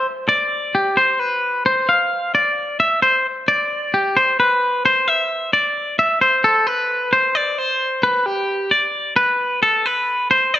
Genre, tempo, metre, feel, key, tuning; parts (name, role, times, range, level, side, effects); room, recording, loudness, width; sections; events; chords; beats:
rock; 264 BPM (eighths); 7/8; straight; C major; A4 = 440 Hz
twangy electric guitar; solo; 0.0-10.6 s; G4 to F5; -15 LUFS; equal; spring reverb
light reverb; -15 LUFS; side -13 dB against mid
0.0-6.4 A section; 6.4-10.6 B section
| 0.07 0.30 0.53 0.75 0.98 1.21 1.44 | 1.67 1.90 2.12 2.35 2.58 2.81 3.04 | 3.26 3.49 3.72 3.95 4.17 4.40 4.63 | 4.86 5.08 5.31 5.54 5.77 5.99 6.22 | 6.45 6.68 6.90 7.13 7.36 7.58 7.81 | 8.04 8.27 8.49 8.72 8.95 9.18 9.40 | 9.63 9.86 10.09 10.31 10.54